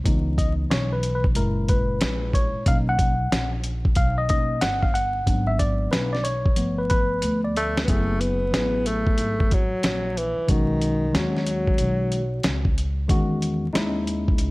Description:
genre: hip hop, jazz-hop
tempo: 92 BPM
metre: 4/4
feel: swing 65% on 16ths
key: unclear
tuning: A4 = 439 Hz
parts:
  - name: mellow tine electric piano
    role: accompaniment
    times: 0.0-14.5 s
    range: A#2 to F#5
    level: -25 LUFS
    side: left 1 dB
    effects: none
  - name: upright bass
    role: bass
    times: 0.0-14.5 s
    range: F#1 to E2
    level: -27 LUFS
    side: equal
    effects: none
  - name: dusty soul sampler-style drum kit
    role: drums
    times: 0.1-14.5 s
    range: hi-hat, kick drum, snare drum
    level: -23 LUFS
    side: equal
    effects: none
  - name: breathy alto saxophone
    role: melody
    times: 7.6-12.8 s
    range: D#3 to B3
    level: -25 LUFS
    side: equal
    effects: none
room: digital ambience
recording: dry, gritty hardware recording, vinyl crackle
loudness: -20 LUFS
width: side -22 dB against mid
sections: 0.0-7.9 A section; 7.9-14.5 B section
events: tine electric piano solo 0.0-7.9; drum fill 7.2-7.9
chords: 0.1 C#m7; 1.4 F#7; 2.7 Bmaj7; 5.3 G#m7b5; 6.6 G9; 7.9 F#m9; 10.5 B; 13.1 Emaj7

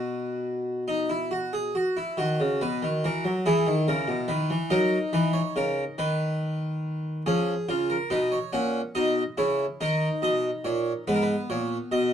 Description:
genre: classical, baroque-style 3-part fugue for harpsichord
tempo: 47 BPM (dotted quarters)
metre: 6/8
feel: straight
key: B major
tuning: A4 = 440 Hz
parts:
  - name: harpsichord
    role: solo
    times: 0.0-12.1 s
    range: G#2 to F#5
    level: -24 LUFS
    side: equal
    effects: none
room: moderate studio reverb, RT60 0.8 s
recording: dark, warm production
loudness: -24 LUFS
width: side -9 dB against mid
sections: 0.0-2.2 A section; 2.2-7.3 B section; 7.3-12.1 A section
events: none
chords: 0.0 B5; 2.2 B; 3.5 E; 4.7 F#7; 6.0 B/D#; 7.3 C#7; 8.5 F#/A#; 9.8 D#5; 11.1 G#m

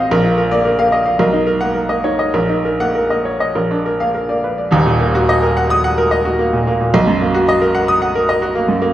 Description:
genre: classical, virtuoso piano study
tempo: 98-114 BPM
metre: 4/4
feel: rubato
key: Eb minor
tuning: A4 = 439 Hz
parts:
  - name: bright baby grand piano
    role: solo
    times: 0.0-8.9 s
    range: Eb1 to Eb6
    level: -13 LUFS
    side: equal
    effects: none
room: wet recital hall reverb, RT60 1.5 s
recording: dark, warm production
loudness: -13 LUFS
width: side -13 dB against mid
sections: 0.0-4.7 A section; 4.7-8.9 B section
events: none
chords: 0.1 Bb; 1.2 Bmaj7; 2.3 Ebm/Bb; 3.6 Bb; 4.7 Ebm; 6.9 Bmaj7

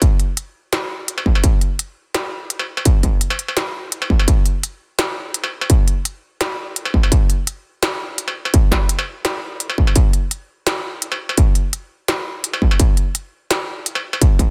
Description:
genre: drum and bass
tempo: 169 BPM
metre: 4/4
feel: half-time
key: none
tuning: none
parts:
  - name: electronic kick drum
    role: drums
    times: 0.0-14.5 s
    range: none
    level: -16 LUFS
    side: equal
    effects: distortion, small room ambience
  - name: industrial drum kit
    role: drums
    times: 0.0-14.5 s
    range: hi-hat, snare drum, struck metal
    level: -23 LUFS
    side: equal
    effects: small room ambience
room: digital ambience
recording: dense, heavily limited modern master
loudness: -19 LUFS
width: mono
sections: 0.0-14.5 A section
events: none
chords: none

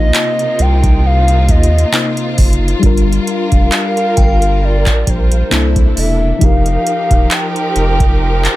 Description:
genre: contemporary R&B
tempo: 67 BPM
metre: 4/4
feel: swing 54% on 16ths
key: C minor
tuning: A4 = 440 Hz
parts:
  - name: hollow clarinet-like synth lead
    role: melody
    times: 0.0-8.6 s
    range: C5 to G5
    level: -19 LUFS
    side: equal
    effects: chorus, tape echo
  - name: mellow FM electric piano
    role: accompaniment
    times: 0.0-8.6 s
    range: C3 to Eb5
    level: -20 LUFS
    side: left 4 dB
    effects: chorus
  - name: warm symphonic string section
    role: sustained chords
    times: 0.0-8.6 s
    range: C3 to Bb4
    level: -20 LUFS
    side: right 1 dB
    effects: none
  - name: saturated sub bass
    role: bass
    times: 0.0-8.5 s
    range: Eb1 to Eb2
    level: -14 LUFS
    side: equal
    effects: none
  - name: booming analog drum machine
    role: drums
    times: 0.1-8.6 s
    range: handclaps, hi-hat, kick drum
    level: -12 LUFS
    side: equal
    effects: overdrive
  - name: glassy synth bell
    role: texture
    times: 4.2-5.1 s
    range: G5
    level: -29 LUFS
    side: left 3 dB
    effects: none
room: little or no reverb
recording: none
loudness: -10 LUFS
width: side -16 dB against mid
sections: 0.0-8.6 A section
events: none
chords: 0.0 Cm7; 2.8 Gm7; 5.5 C13; 6.4 F9sus4

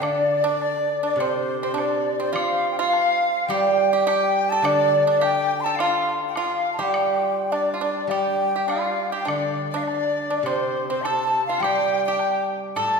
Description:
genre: chinese traditional, Chinese chamber ensemble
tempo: 104 BPM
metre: 4/4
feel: rubato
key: D yu mode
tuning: A4 = 440 Hz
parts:
  - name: xiao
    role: melody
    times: 0.0-13.0 s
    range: C5 to C6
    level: -24 LUFS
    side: left 2 dB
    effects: none
  - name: bright reedy large dizi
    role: second line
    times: 0.0-13.0 s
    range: C5 to A5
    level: -28 LUFS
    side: left 4 dB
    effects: none
  - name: pipa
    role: second line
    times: 0.0-13.0 s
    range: C4 to A4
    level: -27 LUFS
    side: right 3 dB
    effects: none
  - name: steel-string zither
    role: accompaniment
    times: 0.0-13.0 s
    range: A2 to F4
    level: -25 LUFS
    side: right 3 dB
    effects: none
  - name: woodblock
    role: percussion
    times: 0.0-12.9 s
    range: none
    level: -35 LUFS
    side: left 1 dB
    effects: none
room: wet concert hall reverb, RT60 2.1 s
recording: recorded in a church or concert hall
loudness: -20 LUFS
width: side -4 dB against mid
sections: 0.0-13.0 A section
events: none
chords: none

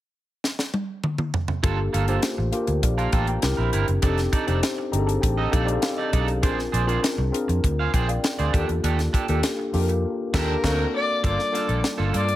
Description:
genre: polished 1980s jazz-funk pop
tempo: 100 BPM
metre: 4/4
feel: straight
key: G minor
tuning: A4 = 440 Hz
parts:
  - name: tight funk drum kit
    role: drums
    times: 0.4-12.4 s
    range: crash cymbal, hi-hat, kick drum, snare drum, toms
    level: -25 LUFS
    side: equal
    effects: none
  - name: mellow tine electric piano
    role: accompaniment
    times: 1.6-12.4 s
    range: G3 to Bb5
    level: -26 LUFS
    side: left 2 dB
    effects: analog chorus
  - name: electric guitar at the edge of break-up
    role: riff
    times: 1.6-12.3 s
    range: Bb3 to F5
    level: -29 LUFS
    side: right 6 dB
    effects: lush chorus
  - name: vintage muted fingered electric bass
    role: bass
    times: 1.6-12.4 s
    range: F1 to G2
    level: -24 LUFS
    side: equal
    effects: none
  - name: dark fiddle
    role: melody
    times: 10.4-12.4 s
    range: Bb4 to D5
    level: -25 LUFS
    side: left 2 dB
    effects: none
room: small room reverb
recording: none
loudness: -21 LUFS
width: side -14 dB against mid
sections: 0.0-1.6 A section; 1.6-11.2 B section; 11.2-12.4 C section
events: drum fill 0.4-1.6; tine electric piano fill 4.6-6.4; band accent 10.0-11.2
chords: 0.0 N.C.; 1.6 Gm9; 3.4 C7; 4.0 F13; 6.4 Bb9; 8.5 Ebmaj9#11; 10.6 D7b13; 11.2 Gm9

